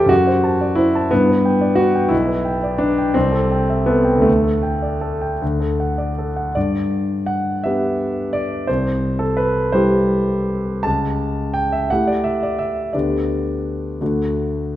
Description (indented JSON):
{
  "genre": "classical, romantic character piece for solo piano",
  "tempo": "51-60 BPM (dotted quarters)",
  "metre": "6/8",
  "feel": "rubato",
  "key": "G major",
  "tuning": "A4 = 440 Hz",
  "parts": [
    { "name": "warm concert grand piano", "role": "solo", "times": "0.0-14.8 s", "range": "B1 to A5", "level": "-16 LUFS", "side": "equal", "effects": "none" }
  ],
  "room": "wet recital hall reverb, RT60 1.8 s",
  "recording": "none",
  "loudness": "-16 LUFS",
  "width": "side -13 dB against mid",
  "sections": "0.0-6.6 A section; 6.6-14.8 B section",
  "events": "none",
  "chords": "0.1 D7/F#; 1.1 G; 2.1 G/B; 3.1 Am7/C; 4.3 Dsus4; 5.4 D; 6.6 G; 8.7 C; 10.8 A7/C#; 12.9 G/D; 14.0 D",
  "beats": "| 0.10 1.11 | 2.12 3.15 | 4.27 5.41 | 6.55 7.63 | 8.68 9.72 | 10.85 11.90 | 12.94 14.01"
}